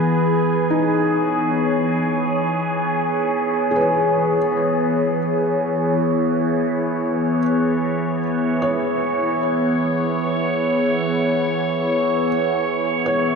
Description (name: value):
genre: ambient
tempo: free time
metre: none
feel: none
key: E major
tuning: A4 = 440 Hz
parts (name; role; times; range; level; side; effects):
- evolving wavetable pad; sustained chords; 0.0-13.4 s; E3 to C#5; -19 LUFS; equal; phaser, built-in reverb
- overtone-sweeping drone; drone; 0.0-13.4 s; E3 to B3; -24 LUFS; left 1 dB; chorus, built-in reverb, phaser
- felt-muted upright piano; arpeggios; 0.7-13.4 s; D#4 to C#5; -27 LUFS; left 1 dB; ping-pong delay
room: wet huge ambient reverb, RT60 8.5 s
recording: dark, warm production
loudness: -17 LUFS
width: side -5 dB against mid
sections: 0.0-13.4 A section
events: none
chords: 0.0 E